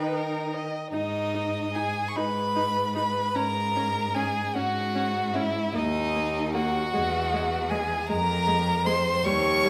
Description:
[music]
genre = classical, slow romantic movement for string quartet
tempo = 50 BPM (dotted quarters)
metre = 6/8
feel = uneven beats, rubato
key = G# minor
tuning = A4 = 439 Hz
[part]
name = clear violin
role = melody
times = 0.0-9.7 s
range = D#5 to C#6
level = -30 LUFS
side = equal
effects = none
[part]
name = rich violin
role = second line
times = 0.0-9.7 s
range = D#4 to D#5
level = -33 LUFS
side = equal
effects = none
[part]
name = clear viola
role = accompaniment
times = 0.0-9.7 s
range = D#3 to D#4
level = -36 LUFS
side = equal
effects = none
[part]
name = clear cello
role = bass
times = 0.0-9.7 s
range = D#2 to D#4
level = -32 LUFS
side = equal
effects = none
[sound]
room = wet recital hall reverb, RT60 1.5 s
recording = none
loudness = -27 LUFS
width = mono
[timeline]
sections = 0.9-9.7 A section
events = none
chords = 0.0 D#; 0.9 G#5; 3.4 F#9/G#; 5.8 D#5; 6.9 E; 8.1 A#5/E#

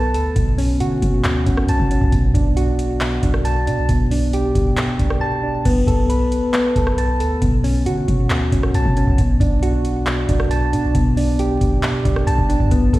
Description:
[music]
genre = hip hop, trap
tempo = 136 BPM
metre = 4/4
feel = half-time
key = B minor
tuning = A4 = 439 Hz
[part]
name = soft electric-piano-like synth keys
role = arpeggios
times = 0.0-13.0 s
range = B2 to A5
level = -19 LUFS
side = equal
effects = chorus, ping-pong delay
[part]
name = clean 808-style bass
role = bass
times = 0.0-13.0 s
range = B1 to D3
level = -20 LUFS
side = equal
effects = none
[part]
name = booming analog drum machine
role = drums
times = 0.1-13.0 s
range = crash cymbal, handclaps, hi-hat, kick drum, rim click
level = -20 LUFS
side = equal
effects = none
[sound]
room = digital ambience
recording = played on a big sound system in a bare room, large studio reverb, vinyl crackle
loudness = -15 LUFS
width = side -17 dB against mid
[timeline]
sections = 0.0-5.7 A section; 5.7-13.0 A section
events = break 5.2-5.7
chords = 0.4 F#m/B; 2.1 D/B; 3.9 Gsus2/B; 5.7 B7(no3); 7.4 F#m/B; 9.2 D/B; 10.9 Gsus2/B

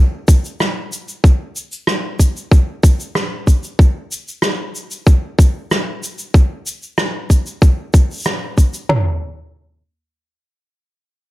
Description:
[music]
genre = folktronica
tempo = 94 BPM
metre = 4/4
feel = straight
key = none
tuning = none
[part]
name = organic electronic drum kit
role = drums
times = 0.3-9.0 s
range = kick drum, snare drum, toms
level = -10 LUFS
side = equal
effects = none
[part]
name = shaker and rim click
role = drums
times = 0.3-8.9 s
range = none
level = -21 LUFS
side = right 1 dB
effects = none
[sound]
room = little or no reverb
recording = none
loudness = -14 LUFS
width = side -17 dB against mid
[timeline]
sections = 0.0-8.9 A section; 8.9-11.3 B section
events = none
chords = none

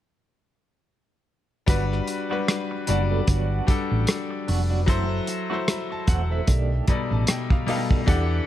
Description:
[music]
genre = lush 1970s-style soul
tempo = 75 BPM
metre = 4/4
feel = swing 58% on 16ths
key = G major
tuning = A4 = 439 Hz
[part]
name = bright grand piano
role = accompaniment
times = 1.7-8.5 s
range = B2 to B5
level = -26 LUFS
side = left 3 dB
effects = none
[part]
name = clean electric guitar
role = riff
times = 1.7-8.2 s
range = D#3 to A4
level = -33 LUFS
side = right 8 dB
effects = wah, tremolo
[part]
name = hollow-body short-scale fingered electric bass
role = bass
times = 1.7-8.4 s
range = E1 to E2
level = -24 LUFS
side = equal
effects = none
[part]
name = warm soul drum kit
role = drums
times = 1.7-8.3 s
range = hi-hat, kick drum, rim click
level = -23 LUFS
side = equal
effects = none
[sound]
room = studio reverb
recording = none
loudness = -21 LUFS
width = side -12 dB against mid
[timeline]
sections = 1.7-8.5 A section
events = grand piano fill 6.5-8.1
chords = 1.7 Gmaj7; 4.9 F#m7b5; 6.5 B7alt

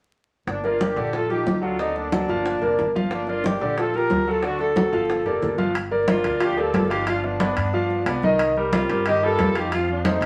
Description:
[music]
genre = latin, salsa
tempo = 182 BPM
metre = 4/4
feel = straight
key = G minor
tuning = A4 = 440 Hz
[part]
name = warm horn section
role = melody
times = 0.5-10.3 s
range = Bb3 to Bb4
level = -28 LUFS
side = equal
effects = none
[part]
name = upright bass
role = bass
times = 0.5-10.3 s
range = F1 to G2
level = -34 LUFS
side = equal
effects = none
[part]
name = bongos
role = percussion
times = 0.5-5.6 s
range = none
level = -35 LUFS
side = equal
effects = none
[part]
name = congas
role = percussion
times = 0.5-10.3 s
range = none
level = -29 LUFS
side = equal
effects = none
[part]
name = bright concert grand piano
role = accompaniment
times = 0.6-10.3 s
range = D3 to F5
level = -26 LUFS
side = equal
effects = none
[part]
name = timbales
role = percussion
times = 5.8-10.3 s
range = none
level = -32 LUFS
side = equal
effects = none
[sound]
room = wet studio reverb, RT60 0.5 s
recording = vinyl crackle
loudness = -22 LUFS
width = mono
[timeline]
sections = 0.5-5.8 A section; 5.8-10.3 B section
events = none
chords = 0.5 Gm; 1.1 Bbmaj7; 1.8 D7; 2.5 Gm7; 3.8 Bbmaj7; 4.4 D; 5.1 Gm7; 7.1 G7; 8.4 Cm7; 9.7 F7

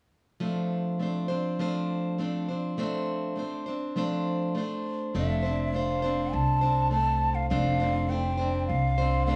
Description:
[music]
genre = folk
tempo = 101 BPM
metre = 4/4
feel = straight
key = F major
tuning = A4 = 440 Hz
[part]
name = picked plugged-in steel-string acoustic guitar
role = accompaniment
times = 0.4-9.4 s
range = F3 to C5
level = -31 LUFS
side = equal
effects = none
[part]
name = upright bass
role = bass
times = 5.1-9.4 s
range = F1 to C2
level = -30 LUFS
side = equal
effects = none
[part]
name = breathy hollow bansuri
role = melody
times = 5.2-9.4 s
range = E5 to A5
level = -31 LUFS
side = equal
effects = none
[sound]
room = moderate small room reverb, RT60 0.5 s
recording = studio reverb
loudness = -28 LUFS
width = mono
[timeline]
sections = 0.4-5.2 A section; 5.2-9.4 B section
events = none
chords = 0.4 F6

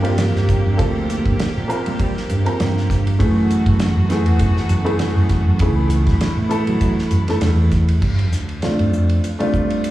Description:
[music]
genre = electric jazz fusion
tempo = 99 BPM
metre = 4/4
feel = swing 54% on 16ths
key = unclear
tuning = A4 = 440 Hz
[part]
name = warm grand piano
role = accompaniment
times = 0.0-9.9 s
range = A3 to Bb4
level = -22 LUFS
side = equal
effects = slapback echo
[part]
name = bright symphonic string section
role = sustained chords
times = 0.0-8.0 s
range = E3 to G4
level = -26 LUFS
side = right 2 dB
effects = none
[part]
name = fretless electric bass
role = bass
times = 0.0-9.9 s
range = C#2 to G3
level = -18 LUFS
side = right 1 dB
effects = none
[part]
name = damped 70s drum kit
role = drums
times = 0.0-9.9 s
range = crash cymbal, hi-hat, kick drum, ride cymbal, snare drum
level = -23 LUFS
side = equal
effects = none
[sound]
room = small room ambience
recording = live gig heard through the venue's PA, club reverb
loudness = -15 LUFS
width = side -15 dB against mid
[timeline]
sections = 0.0-8.0 A section; 8.0-9.9 B section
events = none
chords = 0.0 Gm11; 3.2 F#m11; 8.0 G9sus4

